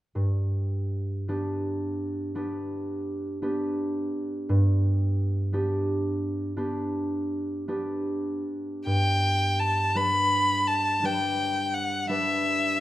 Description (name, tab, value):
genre	classical, romantic duo for violin and harp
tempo	56 BPM (dotted quarters)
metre	12/8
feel	rubato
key	G major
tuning	A4 = 440 Hz
part	concert harp	accompaniment	0.2-12.8 s	G2 to B4	-27 LUFS	right 1 dB	none
part	warm violin	melody	8.9-12.8 s	E5 to B5	-24 LUFS	left 1 dB	none
room	light reverb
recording	none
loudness	-25 LUFS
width	side -14 dB against mid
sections	0.2-8.9 A section; 8.9-12.8 B section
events	none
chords	0.2 G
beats	| 0.17 1.29 2.37 3.42 | 4.49 5.53 6.58 7.69 | 8.87 9.95 11.03 12.09